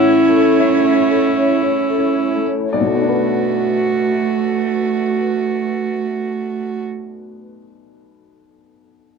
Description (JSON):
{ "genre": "neoclassical piano and strings", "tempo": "53-65 BPM", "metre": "3/4", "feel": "rubato", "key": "B minor", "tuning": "A4 = 441 Hz", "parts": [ { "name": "warm cello", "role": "second line", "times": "0.0-6.8 s", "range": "A3 to C#4", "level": "-19 LUFS", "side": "right 11 dB", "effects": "none" }, { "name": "dark upright piano", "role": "accompaniment", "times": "0.0-9.2 s", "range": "B1 to F#5", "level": "-20 LUFS", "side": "left 8 dB", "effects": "none" }, { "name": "warm viola", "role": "accompaniment", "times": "0.0-6.8 s", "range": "E4 to F#4", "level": "-20 LUFS", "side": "right 3 dB", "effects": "none" }, { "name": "warbly tape-like pad", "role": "sustained chords", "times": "0.1-6.8 s", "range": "A3 to C#5", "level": "-27 LUFS", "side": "equal", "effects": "chorus, built-in reverb" }, { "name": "vibraphone with soft mallets", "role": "arpeggios", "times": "0.0-2.6 s", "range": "A4 to E5", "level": "-22 LUFS", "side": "left 10 dB", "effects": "tape echo" } ], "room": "light reverb", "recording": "none", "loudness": "-14 LUFS", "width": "side -5 dB against mid", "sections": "0.0-2.7 A section; 2.7-6.1 B section", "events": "slowing down 0.0-2.7", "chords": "0.0 A; 2.7 Bm7" }